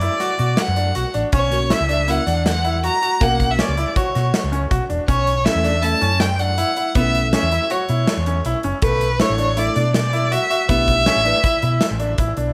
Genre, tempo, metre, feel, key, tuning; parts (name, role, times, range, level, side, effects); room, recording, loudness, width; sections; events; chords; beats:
progressive instrumental, band music in an uneven meter; 160 BPM; 5/4; straight; A4 = 440 Hz
clear violin; melody; 0.0-12.1 s; B4 to A#5; -23 LUFS; equal
bright grand piano; arpeggios; 0.0-12.5 s; A3 to F#4; -26 LUFS; equal; tape echo
hollow-body short-scale fingered electric bass; bass; 0.0-12.5 s; E1 to B2; -24 LUFS; equal
big rock drum kit; drums; 0.0-12.5 s; hi-hat, kick drum, snare drum; -25 LUFS; equal
bell-like tine electric piano; accompaniment; 1.5-11.4 s; A3 to B4; -28 LUFS; equal; lush chorus
moderate studio ambience, RT60 0.5 s; -18 LUFS; mono
0.0-12.5 A section
0.0 Bm; 1.3 F#/B; 5.1 A/B; 8.8 Dsus2
0.21 0.58 0.96 | 1.33 1.71 2.08 2.46 2.83 | 3.21 3.58 3.96 4.33 4.71 | 5.08 5.46 5.83 6.21 6.58 | 6.95 7.33 7.70 8.08 8.45 | 8.82 9.20 9.57 9.95 10.32 | 10.69 11.07 11.44 11.81 12.19